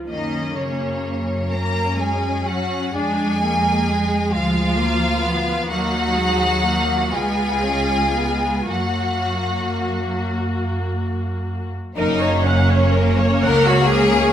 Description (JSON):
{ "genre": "classical, slow romantic movement for string orchestra", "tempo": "36-46 BPM (dotted quarters)", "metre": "6/8", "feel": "rubato", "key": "F# major", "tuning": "A4 = 436 Hz", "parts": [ { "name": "rich studio viola section", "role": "accompaniment", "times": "0.0-14.3 s", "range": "G#3 to F#5", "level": "-24 LUFS", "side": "left 2 dB", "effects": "none" }, { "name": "rich studio violin section", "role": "melody", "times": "0.1-14.3 s", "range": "C#5 to A#5", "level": "-24 LUFS", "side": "equal", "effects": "none" }, { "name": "rich studio violin section", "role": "second line", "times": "0.1-14.3 s", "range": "C#4 to A#4", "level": "-23 LUFS", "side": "left 1 dB", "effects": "none" }, { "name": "clear studio double bass section", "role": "bass", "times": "0.1-14.3 s", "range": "F#1 to F#2", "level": "-24 LUFS", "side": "right 1 dB", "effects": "none" }, { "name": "rich studio cello section", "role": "bass", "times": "0.1-14.3 s", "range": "C#2 to A#3", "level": "-24 LUFS", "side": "right 1 dB", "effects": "none" } ], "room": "moderate scoring stage reverb, RT60 1.5 s", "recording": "none", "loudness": "-17 LUFS", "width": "side -10 dB against mid", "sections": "0.0-12.0 A section; 12.0-14.3 A section", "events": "none", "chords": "0.1 F#; 3.0 A#7/E#; 5.7 D#m; 7.1 C#; 8.7 F#" }